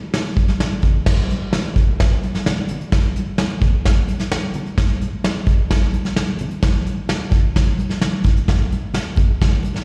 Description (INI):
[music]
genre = soul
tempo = 130 BPM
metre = 4/4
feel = straight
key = none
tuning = none
[part]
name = vintage brush drum kit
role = drums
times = 0.1-9.8 s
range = crash cymbal, hi-hat, kick drum, snare drum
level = -20 LUFS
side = equal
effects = none
[part]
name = congas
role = percussion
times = 0.4-9.8 s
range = none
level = -28 LUFS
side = equal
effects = slapback echo
[sound]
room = little or no reverb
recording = live gig heard through the venue's PA, recital hall reverb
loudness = -19 LUFS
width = mono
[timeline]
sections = 0.0-1.1 A section; 1.1-9.8 B section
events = none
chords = none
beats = 0.14 0.60 | 1.07 1.53 2.00 2.46 | 2.92 3.39 3.85 4.31 | 4.78 5.24 5.70 6.17 | 6.63 7.09 7.56 8.02 | 8.48 8.95 9.41